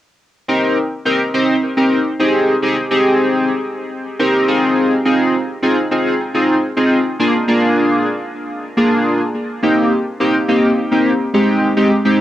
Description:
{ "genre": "pop", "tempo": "105 BPM", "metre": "4/4", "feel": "straight", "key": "C minor", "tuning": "A4 = 443 Hz", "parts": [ { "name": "chorused polysynth", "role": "solo", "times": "0.5-12.2 s", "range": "Ab3 to C5", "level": "-13 LUFS", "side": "equal", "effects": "cassette tape, analog delay" } ], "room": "wet booth ambience, RT60 0.2 s", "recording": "home recording on cassette", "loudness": "-13 LUFS", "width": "side -13 dB against mid", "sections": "0.2-12.2 A section", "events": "none", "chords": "0.2 Cm7; 2.2 Abmaj7; 4.5 Fm7; 7.1 Bb7; 9.3 Cm7; 11.3 Abmaj7" }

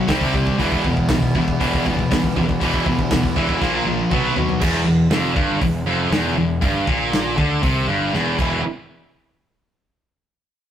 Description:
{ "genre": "heavy metal", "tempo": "119 BPM", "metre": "4/4", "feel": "straight", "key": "E minor", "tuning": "A4 = 441 Hz", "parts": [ { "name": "biting overdriven guitar", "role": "riff", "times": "0.0-4.6 s", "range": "A#2 to G4", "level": "-26 LUFS", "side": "equal", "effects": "none" }, { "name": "heavy high-gain guitar", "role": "riff", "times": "0.0-8.6 s", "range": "E2 to C4", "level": "-20 LUFS", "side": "right 2 dB", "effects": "distortion" }, { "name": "scooped high-gain guitar", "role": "riff", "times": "0.0-8.6 s", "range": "E2 to C4", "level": "-23 LUFS", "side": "left 4 dB", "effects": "distortion" }, { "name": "fuzz picked electric bass", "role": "bass", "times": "0.1-8.6 s", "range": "E1 to D#2", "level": "-27 LUFS", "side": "equal", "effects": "overdrive" }, { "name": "modern studio drum kit", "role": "drums", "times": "0.1-8.5 s", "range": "crash cymbal, hi-hat, kick drum, snare drum, toms", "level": "-23 LUFS", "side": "equal", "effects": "none" } ], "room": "light reverb", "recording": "rough rehearsal-room recording, tube saturation", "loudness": "-17 LUFS", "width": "side -10 dB against mid", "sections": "0.0-4.6 A section; 4.6-8.6 B section; 8.6-10.7 C section", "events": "drum fill 3.6-4.6, 8.1-8.6", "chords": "0.1 C5; 0.6 Em; 3.6 A#5; 4.1 B5; 4.6 Em; 8.4 E5; 8.6 N.C." }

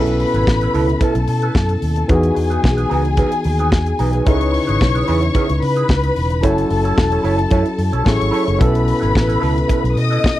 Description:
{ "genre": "disco", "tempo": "111 BPM", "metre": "4/4", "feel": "straight", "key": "unclear", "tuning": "A4 = 439 Hz", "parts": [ { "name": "dark symphonic string section", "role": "second line", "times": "0.0-10.4 s", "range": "G#4 to D#6", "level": "-22 LUFS", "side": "left 3 dB", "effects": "none" }, { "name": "barky tine electric piano", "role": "accompaniment", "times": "0.0-10.4 s", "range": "B2 to B4", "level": "-20 LUFS", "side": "left 2 dB", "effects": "none" }, { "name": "mellow electric guitar", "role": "accompaniment", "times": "0.0-10.3 s", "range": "D#4 to C#5", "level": "-23 LUFS", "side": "right 6 dB", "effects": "wah" }, { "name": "fingered electric bass", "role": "bass", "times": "0.0-10.3 s", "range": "E1 to C#3", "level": "-18 LUFS", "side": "equal", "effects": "none" }, { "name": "modern studio drum kit", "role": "drums", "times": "0.1-10.4 s", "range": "hi-hat, kick drum, snare drum", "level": "-18 LUFS", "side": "equal", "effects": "none" } ], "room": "little or no reverb", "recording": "dry, close 1970s-style studio recording", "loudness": "-14 LUFS", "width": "side -14 dB against mid", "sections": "0.0-10.4 A section", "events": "none", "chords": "0.0 B7sus4; 2.1 Emaj7; 4.3 C#m7; 6.4 F#m7; 8.6 B7sus4" }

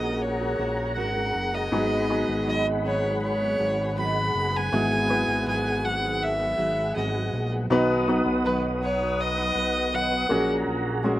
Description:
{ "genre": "pop", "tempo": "80 BPM", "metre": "4/4", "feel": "straight", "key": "G# minor", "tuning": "A4 = 444 Hz", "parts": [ { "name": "warm violin", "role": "melody", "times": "0.0-10.5 s", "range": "B4 to B5", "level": "-27 LUFS", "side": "equal", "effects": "none" }, { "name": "warm concert grand piano", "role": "accompaniment", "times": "0.0-11.2 s", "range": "G#2 to B4", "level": "-28 LUFS", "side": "left 1 dB", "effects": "none" }, { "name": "mellow tonewheel organ", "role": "sustained chords", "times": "0.0-11.2 s", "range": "G#4 to D#6", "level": "-31 LUFS", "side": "equal", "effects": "chorus vibrato, slow rotary speaker" }, { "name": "fingerpicked steel-string acoustic guitar", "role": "arpeggios", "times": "0.0-11.2 s", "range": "G#2 to B4", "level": "-33 LUFS", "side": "right 5 dB", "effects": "slapback echo" }, { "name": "fat analog bass", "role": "bass", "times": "0.0-11.2 s", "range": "F#1 to B1", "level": "-30 LUFS", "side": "equal", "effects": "none" } ], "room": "little or no reverb", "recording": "recorded outdoors, with no room sound", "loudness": "-22 LUFS", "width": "side -14 dB against mid", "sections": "0.0-11.2 A section", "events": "none", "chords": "0.0 F#add9/A#; 1.7 G#m7; 4.7 Eadd9/G#; 7.7 B; 10.3 F#add9/A#" }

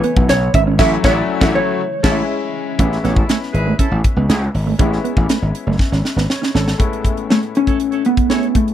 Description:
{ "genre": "polished 1980s jazz-funk pop", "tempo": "120 BPM", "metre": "4/4", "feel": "straight", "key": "A major", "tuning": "A4 = 438 Hz", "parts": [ { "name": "vintage hollow-body jazz guitar", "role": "melody", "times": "0.0-2.5, 7.3-8.7 s", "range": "A3 to E5", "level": "-17 LUFS", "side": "right 1 dB", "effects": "none" }, { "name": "mellow horn section", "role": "second line", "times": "0.0-8.5 s", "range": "C#4 to G#5", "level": "-26 LUFS", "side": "right 1 dB", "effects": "none" }, { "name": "bright grand piano", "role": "accompaniment", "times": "0.0-8.7 s", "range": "A2 to C#5", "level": "-23 LUFS", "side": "left 5 dB", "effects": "analog chorus" }, { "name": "hollow soft pad", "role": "sustained chords", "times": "0.0-2.8 s", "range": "C#3 to E4", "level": "-29 LUFS", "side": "left 2 dB", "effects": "none" }, { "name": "mellow electric guitar", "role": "riff", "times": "0.0-6.6 s", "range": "A3 to C#4", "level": "-21 LUFS", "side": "right 8 dB", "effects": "analog chorus" }, { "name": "crisp fusion drum kit", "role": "drums", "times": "0.0-8.7 s", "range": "crash cymbal, hi-hat, kick drum, snare drum", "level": "-17 LUFS", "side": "equal", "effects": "none" }, { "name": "gritty slap bass", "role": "bass", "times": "0.2-6.7 s", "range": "F#1 to C#2", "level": "-17 LUFS", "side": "equal", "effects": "overdrive" } ], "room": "little or no reverb", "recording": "dry, close 1970s-style studio recording", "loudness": "-14 LUFS", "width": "side -11 dB against mid", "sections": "0.0-2.8 A section; 2.8-6.8 B section; 6.8-8.7 C section", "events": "band accent 0.8-2.8; drum fill 5.8-6.8", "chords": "0.0 Amaj9; 0.8 Dmaj9/A; 1.8 Amaj7" }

